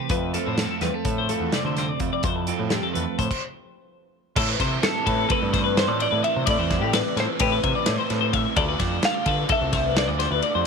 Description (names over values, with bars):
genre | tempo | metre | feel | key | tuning
math rock and midwest emo | 256 BPM (eighths) | 9/8 | straight | unclear | A4 = 442 Hz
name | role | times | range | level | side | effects
twelve-string electric guitar | accompaniment | 0.0-3.3 s | F2 to E4 | -29 LUFS | right 12 dB | none
twelve-string electric guitar | arpeggios | 0.0-10.7 s | G4 to E5 | -26 LUFS | left 16 dB | lush chorus
growling picked electric bass | bass | 0.1-10.6 s | C2 to D3 | -27 LUFS | equal | overdrive
loose indie drum kit | drums | 0.1-10.5 s | crash cymbal, hi-hat, kick drum, ride cymbal, snare drum | -26 LUFS | equal | none
overdriven electric guitar | riff | 0.3-10.7 s | A2 to F4 | -30 LUFS | right 16 dB | none
twelve-string electric guitar | melody | 4.8-10.7 s | A4 to F5 | -26 LUFS | right 1 dB | wide subtle chorus
room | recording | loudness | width
light reverb, studio reverb | 1960s-style stereo with parts hard left and right | -20 LUFS | side -5 dB against mid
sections
0.0-4.4 A section; 4.4-10.7 B section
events
stop 3.3-4.4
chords
0.1 Fmaj7; 4.4 Am9; 8.6 Dm7